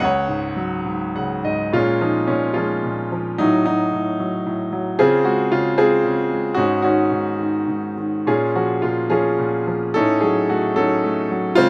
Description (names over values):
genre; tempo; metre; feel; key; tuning
classical, lyrical solo piano; 100-117 BPM; 3/4; rubato; unclear; A4 = 440 Hz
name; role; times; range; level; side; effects
bright grand piano; solo; 0.0-11.7 s; C#2 to F#5; -20 LUFS; equal; none
room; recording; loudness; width
moderate studio reverb, RT60 0.5 s; none; -20 LUFS; mono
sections
0.0-1.7 A section; 1.7-11.7 B section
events
grand piano fill 0.9-1.7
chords
0.0 C#sus4; 1.7 Bbm7; 3.4 Gbm6/A; 5.0 Dbmaj7; 6.6 Ab7sus4; 8.3 Bbm7; 10.0 Gbm6/A